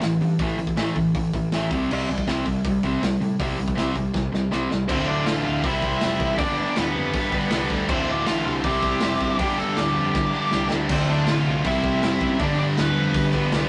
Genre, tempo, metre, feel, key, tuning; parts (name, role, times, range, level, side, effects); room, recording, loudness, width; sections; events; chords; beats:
punk rock; 160 BPM; 4/4; straight; A4 = 440 Hz
cranked stack guitar; riff; 0.0-13.7 s; D2 to C5; -27 LUFS; equal; overdrive
overdriven semi-hollow guitar; riff; 0.0-4.9, 10.9-13.7 s; D2 to C4; -29 LUFS; equal
fuzz picked electric bass; bass; 0.0-13.7 s; D1 to A2; -34 LUFS; equal; overdrive
raw garage drum kit; drums; 0.0-13.6 s; crash cymbal, hi-hat, kick drum, snare drum, splash cymbal; -30 LUFS; equal
nasal lead guitar with a parked wah; melody; 4.9-13.7 s; B3 to A5; -29 LUFS; equal; overdrive
high-gain distorted guitar; riff; 4.9-13.7 s; D2 to C4; -32 LUFS; equal; distortion
moderate stone room reverb, RT60 1.0 s; rough rehearsal-room recording, nothing above 10.8 kHz; -23 LUFS; mono
0.0-4.9 A section; 4.9-13.7 B section
drum fill 4.2-4.9, 10.1-10.9
0.0 A5; 1.7 C5; 4.9 Dm; 5.7 C; 6.4 G; 7.9 Dm; 8.6 C; 9.4 G; 10.9 Dm; 11.6 C; 12.4 G
0.01 | 0.39 0.76 1.14 1.52 | 1.89 2.27 2.65 3.02 | 3.40 3.77 4.15 4.53 | 4.90 5.28 5.65 6.03 | 6.40 6.77 7.15 7.52 | 7.90 8.27 8.65 9.02 | 9.40 9.77 10.15 10.52 | 10.90 11.27 11.65 12.02 | 12.40 12.77 13.15 13.52